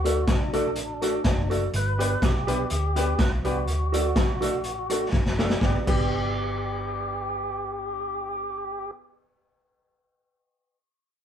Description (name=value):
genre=ska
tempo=124 BPM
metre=4/4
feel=swing 54% on 8ths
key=G major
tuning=A4 = 445 Hz
part: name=tonewheel organ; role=melody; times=0.0-8.9 s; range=D4 to B4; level=-31 LUFS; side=equal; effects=slow rotary speaker
part: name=mellow electric guitar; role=accompaniment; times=0.0-9.4 s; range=F#4 to D5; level=-32 LUFS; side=right 3 dB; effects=spring reverb, analog delay
part: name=warm upright piano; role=stabs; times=0.0-8.9 s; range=A3 to B4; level=-32 LUFS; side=left 2 dB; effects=none
part: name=hollow-body short-scale fingered electric bass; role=bass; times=0.0-8.9 s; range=F#1 to D2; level=-29 LUFS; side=equal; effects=none
part: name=raw garage drum kit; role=drums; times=0.1-6.0 s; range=crash cymbal, hi-hat, kick drum, snare drum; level=-26 LUFS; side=equal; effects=none
room=moderate studio reverb, RT60 0.7 s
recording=band playing live in one room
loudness=-23 LUFS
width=side -9 dB against mid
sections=0.0-5.6 A section; 5.6-9.5 B section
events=drum fill 5.1-5.6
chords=0.0 D; 1.7 G; 3.7 D; 5.6 G